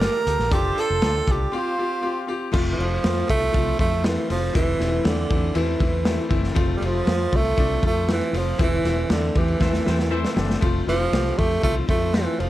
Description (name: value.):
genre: uptempo 1960s-style soul.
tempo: 119 BPM.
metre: 4/4.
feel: straight.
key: F major.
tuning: A4 = 441 Hz.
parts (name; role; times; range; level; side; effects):
breathy tenor saxophone; melody; 0.0-12.5 s; D3 to Bb4; -24 LUFS; right 3 dB; none.
clear horn section; second line; 0.0-2.3, 9.6-10.6 s; C4 to D5; -33 LUFS; left 2 dB; none.
vibraphone with medium mallets; second line; 0.0-12.5 s; D4 to Bb5; -36 LUFS; left 5 dB; none.
clear grand piano; accompaniment; 0.0-12.5 s; E3 to A4; -28 LUFS; left 5 dB; none.
vintage muted fingered electric bass; bass; 0.0-12.5 s; E1 to F2; -25 LUFS; equal; none.
crunchy breakbeat drum kit; drums; 0.0-12.5 s; crash cymbal, hi-hat, kick drum, ride cymbal, snare drum; -24 LUFS; equal; none.
room: studio reverb.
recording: none.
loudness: -19 LUFS.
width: side -14 dB against mid.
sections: 0.0-2.5 A section; 2.5-12.5 B section.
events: break 1.5-2.5; band accent 8.6-10.6; drum fill 9.6-10.6.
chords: 0.0 Gmadd9; 0.5 F6; 1.5 Csus4; 2.5 F; 4.6 Am/E; 6.6 F; 8.6 Am/E; 10.6 F.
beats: 0.01 | 0.52 1.02 1.53 2.03 | 2.53 3.04 3.54 4.05 | 4.55 5.06 5.56 6.07 | 6.57 7.08 7.58 8.09 | 8.60 9.10 9.61 10.12 | 10.62 11.13 11.64 12.15.